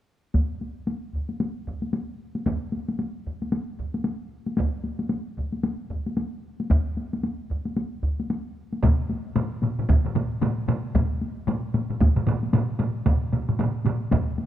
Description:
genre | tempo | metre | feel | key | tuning
japanese traditional, taiko drum ensemble | 113 BPM | 4/4 | swing 60% on 16ths | none | none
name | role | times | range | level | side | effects
solo taiko drums | percussion | 0.3-14.5 s | none | -28 LUFS | left 2 dB | none
taiko ensemble | percussion | 0.3-14.3 s | none | -25 LUFS | right 1 dB | none
taiko ensemble | percussion | 8.8-14.3 s | none | -28 LUFS | left 4 dB | none
taiko ensemble | percussion | 8.8-14.3 s | none | -28 LUFS | right 5 dB | none
room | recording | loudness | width
moderate scoring stage reverb, RT60 1.7 s | close, detailed microphones | -24 LUFS | side -12 dB against mid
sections
0.3-8.8 A section; 8.8-14.5 B section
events
none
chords
none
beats
| 0.34 0.87 1.40 1.93 | 2.46 2.99 3.52 4.05 | 4.58 5.12 5.65 6.18 | 6.71 7.24 7.77 8.30 | 8.83 9.36 9.89 10.42 | 10.95 11.47 12.00 12.53 | 13.06 13.59 14.12

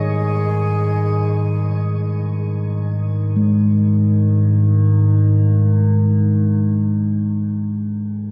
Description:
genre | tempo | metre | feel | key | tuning
world meditative, free-time meditation music | free time | none | none | unclear | A4 = 442 Hz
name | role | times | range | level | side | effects
mellow alto flute | melody | 0.0-2.4 s | G#4 | -30 LUFS | equal | shimmer reverb, diffuse ambient delay
metallic inharmonic drone | drone | 0.0-7.5 s | G#2 to D#3 | -18 LUFS | equal | chorus, built-in reverb
bronze singing bowl | texture | 3.4-7.4 s | G#3 | -23 LUFS | equal | shimmer reverb
room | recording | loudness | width
moderate cathedral reverb, RT60 5.7 s | none | -17 LUFS | mono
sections
0.0-3.3 A section; 3.3-7.6 B section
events
none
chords
none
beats
free time

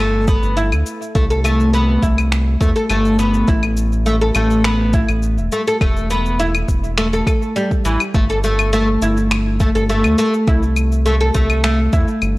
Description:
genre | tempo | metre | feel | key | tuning
organic downtempo | 103 BPM | 4/4 | straight | unclear | A4 = 440 Hz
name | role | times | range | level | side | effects
oud | arpeggios | 0.0-12.1 s | E3 to A4 | -17 LUFS | equal | analog delay
round analog bass | bass | 0.0-12.4 s | E1 to E2 | -18 LUFS | equal | sidechain pumping
electronic cabasa, claves and finger snaps | drums | 0.3-12.3 s | none | -23 LUFS | left 3 dB | overdrive
electronic kick drum | drums | 0.3-12.1 s | none | -17 LUFS | equal | none
room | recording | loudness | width
light reverb | dry, gritty hardware recording, cassette tape | -14 LUFS | side -20 dB against mid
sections
0.0-12.4 A section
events
none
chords
0.0 Gadd9; 1.2 Cmaj7(no3); 3.5 A5; 5.8 N.C.; 8.1 Gsus2; 10.5 C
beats
0.57 | 1.15 1.74 2.32 2.90 | 3.48 4.07 4.65 5.23 | 5.81 6.40 6.98 7.56 | 8.14 8.73 9.31 9.89 | 10.47 11.06 11.64 12.22

